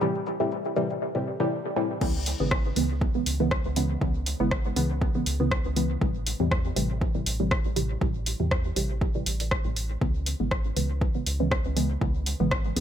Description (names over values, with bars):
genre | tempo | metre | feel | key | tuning
dub techno | 120 BPM | 4/4 | swing 54% on 16ths | C# minor | A4 = 439 Hz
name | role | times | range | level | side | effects
filtered dub chord stab | stabs | 0.0-12.8 s | A2 to B3 | -28 LUFS | equal | chorus, phaser, sidechain pumping, dub echo
deep house drum kit | drums | 0.0-12.8 s | crash cymbal, hi-hat, rim click, shaker | -31 LUFS | equal | overdrive, low-pass filter on perc, low-pass filter on cymbals, low-pass filter on hats, low-pass filter on snare, dub echo
round analog bass | bass | 2.0-12.8 s | G#1 to E2 | -30 LUFS | equal | sidechain pumping
electronic kick drum | drums | 2.0-12.6 s | none | -27 LUFS | equal | overdrive
room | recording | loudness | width
light reverb | echo-heavy mix | -24 LUFS | side -9 dB against mid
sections
0.0-2.0 A section; 2.0-12.8 B section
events
filter sweep on synth stab 2.0-12.8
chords
0.0 Am7; 2.0 C#m7; 6.0 Am7; 10.0 C#m7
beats
| 0.01 0.51 1.01 1.51 | 2.01 2.51 3.01 3.51 | 4.01 4.51 5.01 5.51 | 6.01 6.51 7.01 7.51 | 8.01 8.51 9.01 9.51 | 10.01 10.51 11.01 11.51 | 12.01 12.51